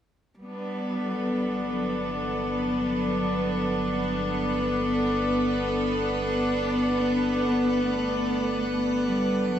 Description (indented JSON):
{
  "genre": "ambient",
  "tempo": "free time",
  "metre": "none",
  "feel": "none",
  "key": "G major",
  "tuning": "A4 = 440 Hz",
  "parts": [
    { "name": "rich cello", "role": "melody", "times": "0.4-9.6 s", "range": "E3 to D4", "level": "-31 LUFS", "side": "equal", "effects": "diffuse ambient delay" },
    { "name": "rich chamber string section", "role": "sustained chords", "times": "0.4-9.6 s", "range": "B3 to B4", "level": "-25 LUFS", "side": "equal", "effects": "none" },
    { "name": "round analog bass", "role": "bass", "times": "0.4-9.6 s", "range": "G1", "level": "-37 LUFS", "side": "equal", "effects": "none" },
    { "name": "drifting glass-harmonics texture", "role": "texture", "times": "1.6-9.6 s", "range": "F#5 to F#6", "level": "-41 LUFS", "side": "left 1 dB", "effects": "chorus, built-in reverb" }
  ],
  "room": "wet cathedral reverb, RT60 5.8 s",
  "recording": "small room ambience",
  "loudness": "-24 LUFS",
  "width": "side -10 dB against mid",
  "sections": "0.4-9.6 A section",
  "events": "fade-in on synth texture 0.4-9.6; fade-in on cello 0.4-9.6",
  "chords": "0.4 Gmaj7"
}